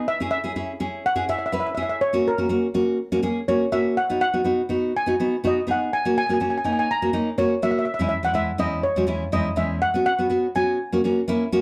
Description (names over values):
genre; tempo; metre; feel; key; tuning
calypso; 123 BPM; 4/4; swing 53% on 16ths; unclear; A4 = 440 Hz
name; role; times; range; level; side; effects
steel pan; melody; 0.0-11.5 s; A#4 to A#5; -26 LUFS; equal; none
nylon-string guitar; accompaniment; 0.0-11.6 s; E2 to B4; -25 LUFS; equal; none
room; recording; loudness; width
wet studio reverb, RT60 0.5 s; none; -23 LUFS; mono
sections
0.0-11.6 A section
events
none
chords
0.1 C#m; 2.0 F#; 4.0 B; 5.9 F#6; 7.9 C#m/E; 9.8 F#sus4; 10.8 F#add9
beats
| 0.08 0.57 1.05 1.54 | 2.03 2.51 3.00 3.49 | 3.97 4.46 4.95 5.43 | 5.92 6.41 6.89 7.38 | 7.87 8.36 8.84 9.33 | 9.82 10.30 10.79 11.28